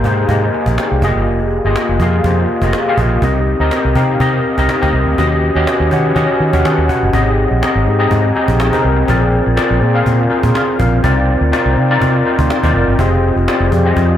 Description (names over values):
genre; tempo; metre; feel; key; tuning
polished 1980s jazz-funk pop; 123 BPM; 4/4; swing 54% on 16ths; F dorian; A4 = 441 Hz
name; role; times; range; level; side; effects
overdriven tine electric piano; accompaniment; 0.0-14.2 s; Bb3 to F6; -14 LUFS; left 2 dB; ensemble chorus
vintage muted fingered electric bass; bass; 0.0-14.2 s; F1 to Eb3; -15 LUFS; right 1 dB; none
cajon; drums; 0.0-14.2 s; none; -22 LUFS; right 1 dB; none
room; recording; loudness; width
light reverb, small room ambience; none; -11 LUFS; side -10 dB against mid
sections
0.0-7.1 A section; 7.1-14.2 B section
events
none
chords
0.0 Abmaj9; 1.0 Fm11; 3.2 Cm7; 5.2 Eb7alt; 7.1 Abmaj7; 9.1 Bb9; 11.0 Cm11; 13.0 Fm9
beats
0.28 0.77 | 1.26 1.75 2.24 2.73 | 3.22 3.71 4.20 4.69 | 5.18 5.67 6.16 6.65 | 7.13 7.62 8.11 8.60 | 9.09 9.58 10.06 10.55 | 11.04 11.53 12.02 12.50 | 12.99 13.48 13.96